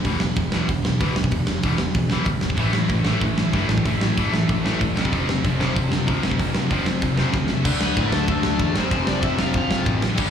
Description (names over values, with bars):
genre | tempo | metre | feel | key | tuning
punk rock | 189 BPM | 4/4 | straight | unclear | A4 = 440 Hz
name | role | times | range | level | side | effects
distorted electric guitar | riff | 0.0-10.3 s | E2 to D4 | -26 LUFS | left 9 dB | overdrive
sludgy distorted guitar | riff | 0.0-7.6 s | E2 to A3 | -26 LUFS | right 7 dB | overdrive, slapback echo
growling picked electric bass | bass | 0.0-10.3 s | E1 to A2 | -26 LUFS | equal | overdrive
big rock drum kit | drums | 0.0-10.3 s | crash cymbal, hi-hat, kick drum, ride cymbal, snare drum | -24 LUFS | right 1 dB | none
high-gain distorted guitar | riff | 2.6-10.3 s | F2 to D4 | -27 LUFS | equal | distortion, slapback echo
cranked stack guitar | melody | 7.8-10.0 s | A3 to F5 | -26 LUFS | right 1 dB | overdrive, slapback echo
room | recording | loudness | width
little or no reverb | live gig heard through the venue's PA, club reverb | -19 LUFS | side -8 dB against mid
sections
0.0-7.7 A section; 7.7-10.3 B section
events
drum fill 7.3-7.7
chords
0.0 E5; 2.6 A5; 5.0 F5; 7.7 D5; 8.8 F